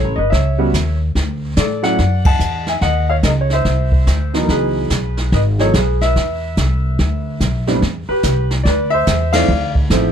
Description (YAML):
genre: jazz piano trio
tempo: 144 BPM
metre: 4/4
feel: swing 64% on 8ths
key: unclear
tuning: A4 = 435 Hz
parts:
  - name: clear baby grand piano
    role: melody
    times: 0.0-10.1 s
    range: A2 to A5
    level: -18 LUFS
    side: equal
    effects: none
  - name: upright bass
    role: bass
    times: 0.0-10.1 s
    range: G1 to A2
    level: -17 LUFS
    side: equal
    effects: none
  - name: jazz brush drum kit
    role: drums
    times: 0.3-10.1 s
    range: brushed snare drum, hi-hat, kick drum, ride cymbal, snare drum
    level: -20 LUFS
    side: right 1 dB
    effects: none
room: little or no reverb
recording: none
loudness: -14 LUFS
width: side -8 dB against mid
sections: 0.0-7.8 A section; 7.8-10.1 B section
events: band accent 2.2, 9.3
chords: 0.0 A9; 1.2 Dadd9; 2.8 D#5; 3.7 Cadd9; 4.5 C#m11; 6.2 E5; 7.8 Am11 (rootless); 9.5 Dm9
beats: 0.32 0.74 | 1.15 1.57 1.99 2.40 | 2.82 3.24 3.65 4.07 | 4.49 4.90 5.32 5.74 | 6.15 6.57 6.98 7.40 | 7.82 8.23 8.65 9.06 | 9.48 9.90